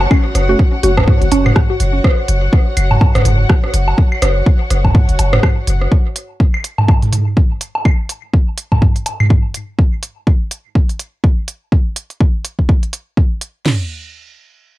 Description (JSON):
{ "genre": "minimal techno", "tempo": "124 BPM", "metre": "4/4", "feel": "swing 58% on 16ths", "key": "unclear", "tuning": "A4 = 441 Hz", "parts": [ { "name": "punchy sub bass", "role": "bass", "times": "0.0-5.9 s", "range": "F#1", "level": "-15 LUFS", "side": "equal", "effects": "tube saturation, sidechain pumping" }, { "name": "booming analog drum machine", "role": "percussion", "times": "0.0-9.3 s", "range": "rim click, toms, woodblock", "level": "-17 LUFS", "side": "right 1 dB", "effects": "ping-pong delay" }, { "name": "downlifter", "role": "sound effects", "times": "0.0-2.0 s", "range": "none", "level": "-36 LUFS", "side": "equal", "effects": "none" }, { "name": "dark chamber string section", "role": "texture", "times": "0.0-5.9 s", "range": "F#4 to F#5", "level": "-23 LUFS", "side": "equal", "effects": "sidechain pumping" }, { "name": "mallet-like synth pluck", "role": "riff", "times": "0.1-1.8 s", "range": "C#4 to F#4", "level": "-19 LUFS", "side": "right 2 dB", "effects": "chorus, cassette tape, sidechain pumping, digital delay" }, { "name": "house drum kit", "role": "drums", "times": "0.1-13.8 s", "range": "crash cymbal, kick drum, snare drum, toms", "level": "-12 LUFS", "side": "equal", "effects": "overdrive" }, { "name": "minimal click drum kit", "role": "drums", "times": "0.3-13.5 s", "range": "hi-hat, rim click", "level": "-21 LUFS", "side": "right 2 dB", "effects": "none" }, { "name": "percussive organ stab", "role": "stabs", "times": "0.5-0.9 s", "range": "A3 to F#4", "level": "-24 LUFS", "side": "right 1 dB", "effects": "none" } ], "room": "little or no reverb", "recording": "dark, warm production", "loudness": "-12 LUFS", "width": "side -16 dB against mid", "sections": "0.0-13.7 A section; 13.7-14.8 B section", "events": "filter sweep on synth arpeggio sound 0.0-2.0", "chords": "0.0 F#5; 13.7 N.C." }